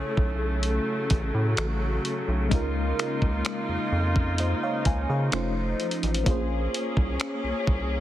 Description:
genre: contemporary R&B.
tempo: 64 BPM.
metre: 4/4.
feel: straight.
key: Db major.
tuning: A4 = 438 Hz.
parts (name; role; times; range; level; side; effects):
FM electric piano with auto-pan; accompaniment; 0.0-8.0 s; Ab3 to Ab5; -31 LUFS; left 2 dB; phaser.
muted studio string section; sustained chords; 0.0-8.0 s; C#3 to G#4; -30 LUFS; equal; none.
rubbery square bass; bass; 0.0-8.0 s; F1 to Db3; -27 LUFS; equal; none.
dusty soul sampler-style drum kit; drums; 0.2-7.9 s; finger snaps, hi-hat, kick drum; -26 LUFS; equal; none.
room: little or no reverb.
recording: heavily compressed radio sound.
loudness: -24 LUFS.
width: side -13 dB against mid.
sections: 0.0-8.0 A section.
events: none.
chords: 0.0 Amaj7; 2.5 Db69; 5.3 F7b13; 6.3 Bbm9.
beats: 0.64 1.58 | 2.51 3.45 4.39 5.33 | 6.26 7.20.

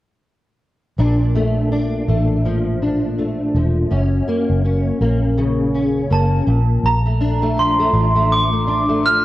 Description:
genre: indie pop, bedroom pop.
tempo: 82 BPM.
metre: 4/4.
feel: swing 60% on 16ths.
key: unclear.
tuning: A4 = 440 Hz.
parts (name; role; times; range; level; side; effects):
fingerpicked plugged-in steel-string acoustic guitar; accompaniment; 1.0-9.2 s; Gb2 to D4; -19 LUFS; left 1 dB; ensemble chorus, warbly pitch drift.
vintage muted fingered electric bass; bass; 1.0-9.2 s; E1 to Bb1; -18 LUFS; equal; none.
glockenspiel with hard plastic mallets; melody; 6.1-9.2 s; A5 to F6; -18 LUFS; right 1 dB; lush chorus, slapback echo.
room: light reverb, small room reverb.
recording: worn, warbling old tape, cassette tape, warbly pitch drift.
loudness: -15 LUFS.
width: side -16 dB against mid.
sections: 1.0-6.8 A section; 6.8-9.2 B section.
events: none.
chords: 1.0 Bbmaj7; 3.9 Gb; 6.5 N.C.; 6.8 Bbmaj7.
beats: | 0.98 1.72 2.45 3.18 | 3.91 4.64 5.38 6.11 | 6.84 7.57 8.30 9.03.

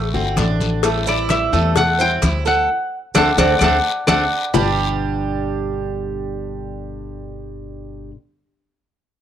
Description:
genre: latin, Cuban son and guajira.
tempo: 129 BPM.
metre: 4/4.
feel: straight.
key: G major.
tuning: A4 = 443 Hz.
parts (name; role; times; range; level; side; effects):
koto; melody; 0.0-8.1 s; D5 to B5; -18 LUFS; left 1 dB; cassette tape, plate reverb.
Cuban tres; arpeggios; 0.0-8.1 s; G3 to A4; -23 LUFS; right 9 dB; cassette tape.
upright bass; bass; 0.0-8.1 s; G1 to E2; -23 LUFS; equal; none.
nylon-string guitar; accompaniment; 0.1-8.2 s; G2 to G4; -27 LUFS; left 7 dB; cassette tape.
congas; percussion; 0.1-4.7 s; none; -23 LUFS; equal; none.
cowbell and bongos; percussion; 0.4-4.7 s; none; -23 LUFS; left 10 dB; none.
guiro; percussion; 0.4-4.7 s; none; -29 LUFS; left 10 dB; none.
maracas; percussion; 0.4-4.7 s; none; -31 LUFS; right 11 dB; none.
room: moderate studio reverb, RT60 0.6 s.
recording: home recording on cassette.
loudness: -16 LUFS.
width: side -10 dB against mid.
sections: 0.0-4.5 A section; 4.5-8.3 B section.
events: band accent 2.7-4.5; drum fill 3.9-4.5.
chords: 0.0 D7; 0.8 Am7; 2.7 D7; 4.5 G.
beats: 0.37 | 0.84 1.30 1.76 2.23 | 2.69 3.16 3.62 4.08 | 4.55 5.01 5.47 5.94 | 6.40 6.87 7.33 7.79.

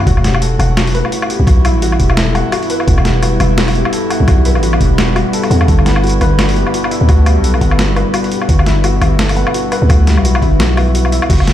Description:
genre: half-time drum and bass.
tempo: 171 BPM.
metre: 4/4.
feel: swing 58% on 16ths, half-time.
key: unclear.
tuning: A4 = 439 Hz.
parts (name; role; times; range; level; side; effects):
deep dark ambient pad; sustained chords; 0.0-11.5 s; G3 to C#5; -19 LUFS; left 1 dB; chorus, built-in reverb, sidechain pumping.
felt-muted upright piano; arpeggios; 0.0-11.5 s; E4 to F#5; -20 LUFS; left 3 dB; ping-pong delay.
growling 808-style bass; bass; 0.1-11.5 s; E1 to E2; -12 LUFS; equal; none.
boom bap sampler-style drum kit; drums; 0.1-11.5 s; crash cymbal, hi-hat, snare drum, woodblock; -18 LUFS; left 1 dB; overdrive.
electronic kick drum; drums; 0.1-11.4 s; none; -11 LUFS; equal; overdrive.
metallic inharmonic drone; texture; 0.7-11.3 s; E4; -25 LUFS; right 5 dB; chorus, built-in reverb.
room: little or no reverb.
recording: played on a big sound system in a bare room, large studio reverb.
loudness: -10 LUFS.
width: side -12 dB against mid.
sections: 0.0-11.3 A section.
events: drop 0.0-11.3; kick drops out 10.9-11.3.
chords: 0.1 Em; 5.7 G.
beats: | 0.07 0.42 0.77 1.12 | 1.47 1.82 2.17 2.52 | 2.88 3.23 3.58 3.93 | 4.28 4.63 4.98 5.33 | 5.68 6.03 6.38 6.74 | 7.09 7.44 7.79 8.14 | 8.49 8.84 9.19 9.54 | 9.89 10.24 10.59 10.95 | 11.30.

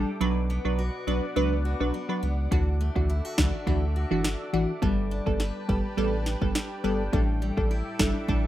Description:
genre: dancehall.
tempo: 104 BPM.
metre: 4/4.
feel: straight.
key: D major.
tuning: A4 = 440 Hz.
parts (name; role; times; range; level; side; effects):
wavetable chord stab; accompaniment; 0.0-8.5 s; E3 to B4; -29 LUFS; right 1 dB; sidechain pumping.
lush unison pad; sustained chords; 0.0-8.5 s; A4 to D6; -39 LUFS; equal; chorus, phaser, sidechain pumping.
picked steel-string acoustic guitar; arpeggios; 0.0-8.5 s; A2 to B4; -35 LUFS; left 2 dB; none.
warm sub bass; bass; 0.0-8.5 s; G1 to D2; -27 LUFS; equal; none.
afro-pop drum kit; drums; 2.5-8.4 s; kick drum, snare drum; -27 LUFS; equal; none.
room: light reverb.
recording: rough home demo mix.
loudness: -24 LUFS.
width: side -13 dB against mid.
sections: 0.0-8.5 A section.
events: none.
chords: 0.2 Bm; 2.5 Dadd9; 4.8 Gadd9; 7.1 A7sus4.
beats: | 0.21 0.79 1.36 1.94 | 2.52 3.09 3.67 4.25 | 4.82 5.40 5.98 6.55 | 7.13 7.71 8.29.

